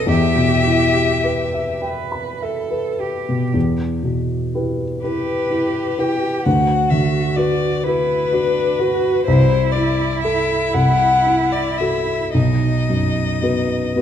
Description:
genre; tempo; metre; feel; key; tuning
classical, slow romantic movement for piano trio; 34-43 BPM (dotted quarters); 6/8; rubato; E minor; A4 = 441 Hz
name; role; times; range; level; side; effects
warm violin; melody; 0.0-14.0 s; B4 to G5; -20 LUFS; left 5 dB; none
rich cello; second line; 0.0-14.0 s; D4 to B4; -24 LUFS; right 6 dB; none
dark baby grand piano; accompaniment; 0.0-14.0 s; B1 to B5; -18 LUFS; equal; none
room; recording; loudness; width
moderate scoring stage reverb, RT60 1.5 s; dark, warm production; -16 LUFS; side -9 dB against mid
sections
0.0-3.5 A section; 3.5-14.0 B section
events
none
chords
0.1 Em; 6.5 Bm/D; 9.3 Am/C; 10.8 F#m7b5/C; 12.3 B

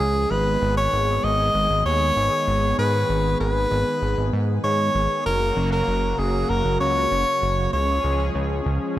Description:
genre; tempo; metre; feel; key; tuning
synthwave; 97 BPM; 4/4; straight; G# dorian; A4 = 438 Hz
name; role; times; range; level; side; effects
breathy tenor saxophone; melody; 0.0-8.3 s; G#4 to D#5; -22 LUFS; equal; digital delay
brassy analog pad; sustained chords; 0.0-9.0 s; C#3 to G#4; -27 LUFS; equal; chorus
fat analog bass; bass; 0.0-9.0 s; F#1 to G#2; -24 LUFS; equal; none
room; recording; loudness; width
moderate lush hall reverb, RT60 2.9 s; bright 1980s-style digital production; -19 LUFS; side -14 dB against mid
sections
0.0-9.0 A section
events
none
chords
0.3 G#m; 5.3 F#; 7.7 C#

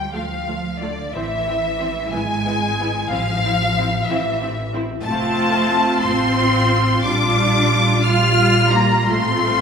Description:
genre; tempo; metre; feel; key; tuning
classical, slow romantic movement for string orchestra; 61 BPM (dotted quarters); 6/8; rubato; F major from 5.1 s; A4 = 440 Hz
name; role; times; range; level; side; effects
clear symphonic violin section; melody; 0.0-9.6 s; D5 to F6; -22 LUFS; left 3 dB; none
rich symphonic violin section; second line; 0.0-9.6 s; D5 to F6; -23 LUFS; left 1 dB; none
rich symphonic cello section; bass; 0.0-9.6 s; D3 to F4; -24 LUFS; right 2 dB; none
rich symphonic viola section; accompaniment; 0.1-9.6 s; G3 to F4; -23 LUFS; equal; none
rich studio double bass section; bass; 0.1-9.6 s; F1 to D2; -23 LUFS; right 2 dB; none
room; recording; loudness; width
wet recital hall reverb, RT60 1.8 s; recorded in a church or concert hall; -16 LUFS; side -6 dB against mid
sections
0.0-9.6 A section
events
none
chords
0.0 Dm; 1.1 Am; 2.1 E/G#; 3.1 Am; 5.1 F; 7.0 Bb6; 9.1 F/A

